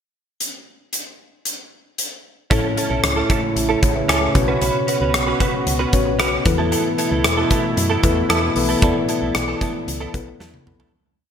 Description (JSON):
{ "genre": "1980s-style pop", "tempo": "114 BPM", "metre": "4/4", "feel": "straight", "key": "unclear", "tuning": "A4 = 441 Hz", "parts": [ { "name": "huge arena drum kit", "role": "drums", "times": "0.4-10.9 s", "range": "hi-hat, kick drum, rim click, snare drum, toms", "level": "-21 LUFS", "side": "equal", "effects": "gated reverb" }, { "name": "mellow tine electric piano", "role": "accompaniment", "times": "2.5-11.0 s", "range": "A2 to A5", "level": "-22 LUFS", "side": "left 3 dB", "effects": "none" }, { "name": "warm analog pad", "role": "sustained chords", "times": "3.1-10.9 s", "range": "B2 to F#4", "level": "-25 LUFS", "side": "right 2 dB", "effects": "chorus" }, { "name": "direct-recorded clean electric guitar", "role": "riff", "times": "2.5-10.9 s", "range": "B3 to B4", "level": "-24 LUFS", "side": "right 4 dB", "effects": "ensemble chorus, ping-pong delay" }, { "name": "solid FM bass", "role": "bass", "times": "2.5-10.9 s", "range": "A1 to F#2", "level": "-24 LUFS", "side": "equal", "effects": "none" } ], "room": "moderate lush hall reverb, RT60 1.6 s, small room reverb", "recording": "bright 1980s-style digital production", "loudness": "-17 LUFS", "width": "side -8 dB against mid", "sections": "0.4-2.5 pickup bar; 2.5-10.9 verse", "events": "fade-out 8.8-10.9; drum fill 10.4-10.9", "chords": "0.4 N.C.; 2.5 A; 4.4 Bsus2; 6.5 Esus4" }